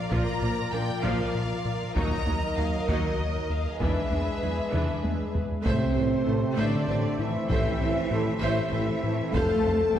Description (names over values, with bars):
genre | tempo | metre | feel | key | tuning
cinematic, hybrid orchestral and electronic film score | 65 BPM (dotted quarters) | 6/8 | straight | A minor from 5.7 s | A4 = 440 Hz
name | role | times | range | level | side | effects
rich chamber violin section | melody | 0.0-10.0 s | C5 to Bb5 | -36 LUFS | left 2 dB | none
warm symphonic violin section | second line | 0.0-10.0 s | G#4 to A5 | -35 LUFS | left 1 dB | none
chorused pulse-width pad | sustained chords | 0.0-10.0 s | F3 to F5 | -33 LUFS | equal | none
bright symphonic viola section | accompaniment | 0.1-10.0 s | E3 to C5 | -34 LUFS | right 1 dB | none
thumb-piano-like synth pluck | arpeggios | 0.1-10.0 s | D#3 to Bb4 | -38 LUFS | right 3 dB | none
rubbery square bass | riff | 0.1-10.0 s | D#2 to Bb2 | -31 LUFS | left 1 dB | none
rich symphonic cello section | bass | 0.1-10.0 s | D#2 to A3 | -33 LUFS | right 2 dB | none
taiko ensemble | drums | 0.1-9.9 s | none | -32 LUFS | equal | none
warm French horn section | sustained chords | 5.7-10.0 s | C4 to A4 | -29 LUFS | left 1 dB | none
clear tuba | bass | 5.7-10.0 s | F1 to A1 | -36 LUFS | right 2 dB | none
rich symphonic double bass section | bass | 5.7-10.0 s | F1 to A1 | -36 LUFS | right 2 dB | none
clear trombone section | sustained chords | 6.3-10.0 s | E3 to A3 | -39 LUFS | right 3 dB | none
room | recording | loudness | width
wet scoring stage reverb, RT60 1.7 s | heard from further back in the room | -24 LUFS | side -10 dB against mid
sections
0.0-5.7 A section; 5.7-10.0 B section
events
drum fill 4.7-5.7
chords
0.0 Bb; 2.0 D#m; 3.8 E7; 5.7 Am; 9.3 F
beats
| 0.11 1.04 | 1.96 2.88 | 3.81 4.73 | 5.65 6.58 | 7.50 8.42 | 9.35